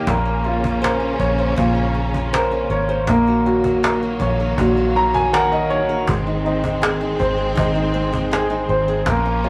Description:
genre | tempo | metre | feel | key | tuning
pop ballad | 80 BPM | 4/4 | straight | unclear | A4 = 440 Hz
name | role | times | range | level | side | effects
clear concert grand piano | accompaniment | 0.0-9.5 s | Ab3 to Bb5 | -22 LUFS | equal | none
bright studio string section | sustained chords | 0.0-9.5 s | Db3 to Db4 | -28 LUFS | equal | none
flamenco guitar | arpeggios | 0.0-9.5 s | Ab2 to C5 | -27 LUFS | equal | none
vintage muted fingered electric bass | bass | 0.0-9.5 s | Ab1 to Bb1 | -26 LUFS | equal | none
cajon | drums | 0.1-9.2 s | none | -26 LUFS | equal | none
room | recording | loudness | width
wet studio reverb, RT60 0.6 s | rough rehearsal-room recording, tube saturation | -19 LUFS | mono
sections
0.0-9.5 A section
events
grand piano fill 4.6-6.1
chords
0.1 Bbmadd9; 3.1 Gb6/Bb; 6.1 Ab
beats
| 0.07 0.82 1.57 2.33 | 3.08 3.83 4.58 5.33 | 6.08 6.83 7.58 8.32 | 9.07

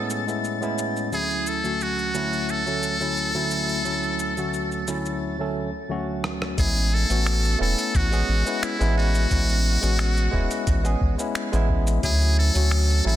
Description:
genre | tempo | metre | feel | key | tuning
sunset chillout | 88 BPM | 4/4 | straight | A major | A4 = 439 Hz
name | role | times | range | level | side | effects
trumpet with metal mute | melody | 0.0-13.2 s | E4 to A4 | -26 LUFS | equal | digital delay
barky tine electric piano | accompaniment | 0.0-13.2 s | D2 to A4 | -27 LUFS | equal | overdrive, auto-pan, digital delay
drifting glass-harmonics texture | texture | 0.0-5.2 s | A6 | -37 LUFS | left 4 dB | chorus, built-in reverb
dusty soul sampler-style drum kit | drums | 0.1-13.0 s | finger snaps, hi-hat, rim click, shaker | -33 LUFS | equal | soft clipping on snare
round analog bass | bass | 6.6-13.2 s | E1 to D2 | -21 LUFS | equal | none
electronic kick drum | drums | 6.6-12.2 s | none | -25 LUFS | equal | none
room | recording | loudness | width
light reverb, digital ambience | dense, heavily limited modern master | -21 LUFS | side -12 dB against mid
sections
0.0-6.6 A section; 6.6-13.2 B section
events
break 5.2-6.6; drum fill 6.2-6.6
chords
0.0 Amaj9; 1.1 Dmaj9; 6.6 Amaj9; 12.0 Dmaj9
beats
0.44 | 1.12 1.81 2.49 3.17 | 3.85 4.53 5.22 5.90 | 6.58 7.26 7.94 8.62 | 9.31 9.99 10.67 11.35 | 12.03 12.72

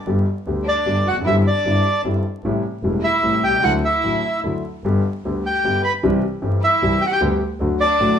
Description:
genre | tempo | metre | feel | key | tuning
tango | 152 BPM | 3/4 | rubato | G major | A4 = 440 Hz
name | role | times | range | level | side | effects
clear concert grand piano | accompaniment | 0.1-8.2 s | E1 to G4 | -21 LUFS | left 1 dB | none
clear double bass | bass | 0.1-8.2 s | E1 to D2 | -24 LUFS | left 1 dB | none
bandoneon | melody | 0.7-8.2 s | D5 to B5 | -18 LUFS | right 1 dB | none
warm symphonic violin section | second line | 0.7-8.2 s | D4 to B4 | -27 LUFS | left 1 dB | none
room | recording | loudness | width
wet studio reverb, RT60 0.8 s | band playing live in one room, vinyl crackle | -17 LUFS | side -8 dB against mid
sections
0.1-8.2 A section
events
none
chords
0.1 G; 1.3 Cadd9/G; 2.4 Am7; 3.6 Dadd9; 4.8 G; 6.0 C; 7.2 G/D; 7.6 D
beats
| 0.07 0.47 0.87 | 1.26 1.66 2.05 | 2.44 2.84 3.24 | 3.63 4.03 4.43 | 4.84 5.24 5.64 | 6.03 6.43 6.82 | 7.21 7.61 8.00

